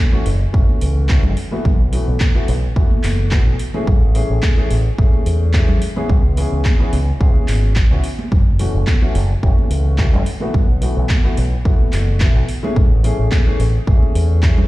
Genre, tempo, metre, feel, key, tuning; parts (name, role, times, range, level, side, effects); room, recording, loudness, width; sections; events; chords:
nu-disco, nu disco; 108 BPM; 4/4; swing 53% on 16ths; F# minor; A4 = 440 Hz
dark grand piano; accompaniment; 0.0-14.7 s; E3 to G#4; -24 LUFS; left 2 dB; sidechain pumping, slapback echo
fingered electric bass with an envelope filter; bass; 0.3-14.7 s; F#1 to E2; -16 LUFS; equal
house drum kit; drums; 0.3-14.5 s; handclaps, hi-hat; -28 LUFS; equal; studio reverb
electronic kick drum; drums; 0.5-14.5 s; -14 LUFS; equal; studio reverb
congas; percussion; 0.7-14.7 s; -28 LUFS; right 2 dB
digital ambience; played on a big sound system in a bare room, large studio reverb; -13 LUFS; side -18 dB against mid
0.0-14.7 A section
0.0 F#m7; 1.7 B7sus4; 3.9 Amaj7; 6.1 C#m7; 8.3 F#m7; 10.5 B7sus4; 12.8 Amaj7